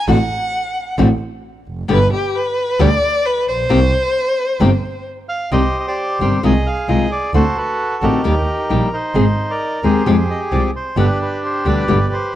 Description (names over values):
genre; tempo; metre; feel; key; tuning
tango; 132 BPM; 4/4; rubato; C minor; A4 = 439 Hz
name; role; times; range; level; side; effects
warm violin; second line; 0.0-5.0 s; G4 to F#5; -18 LUFS; left 1 dB; none
nylon-string guitar; accompaniment; 0.1-12.0 s; B2 to Ab4; -17 LUFS; left 4 dB; none
clear double bass; bass; 0.1-12.1 s; F1 to F2; -18 LUFS; right 2 dB; none
bandoneon; melody; 5.3-12.4 s; D4 to F5; -19 LUFS; right 1 dB; none
room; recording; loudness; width
little or no reverb; dry, close 1970s-style studio recording; -14 LUFS; side -12 dB against mid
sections
0.0-5.5 A section; 5.5-12.4 B section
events
violin solo 0.0-5.5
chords
0.1 D7/A; 1.9 G; 3.7 Cm7; 5.5 Cm; 6.4 Fm7/C; 7.3 D7; 8.2 Eb; 9.2 Abadd9; 10.1 Fmadd9; 11.0 G